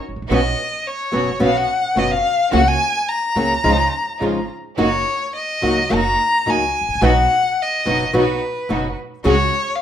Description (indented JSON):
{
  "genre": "tango",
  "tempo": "107 BPM",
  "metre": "4/4",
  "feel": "rubato",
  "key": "F# major",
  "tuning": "A4 = 439 Hz",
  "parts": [
    { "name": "upright bass", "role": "bass", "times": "0.1-9.5 s", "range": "F#1 to C#2", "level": "-23 LUFS", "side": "right 2 dB", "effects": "none" },
    { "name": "warm violin", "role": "second line", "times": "0.3-9.8 s", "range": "B4 to A#5", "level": "-19 LUFS", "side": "left 2 dB", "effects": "none" },
    { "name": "flamenco guitar", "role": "accompaniment", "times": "0.3-9.3 s", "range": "B2 to G#4", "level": "-20 LUFS", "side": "left 1 dB", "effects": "none" },
    { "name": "clear symphonic string section", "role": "stabs", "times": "0.3-9.5 s", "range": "G#3 to F#4", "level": "-25 LUFS", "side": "right 3 dB", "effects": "none" }
  ],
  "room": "moderate large studio reverb, RT60 1.1 s",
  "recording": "minimal, uncompressed stereo recording",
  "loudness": "-16 LUFS",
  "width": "side -9 dB against mid",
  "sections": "0.0-9.8 A section",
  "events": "violin solo 0.0-9.8",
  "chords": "0.3 Bsus2; 2.5 F#/C#; 3.6 C#add9; 4.8 F#6; 7.0 B; 9.3 C#sus4"
}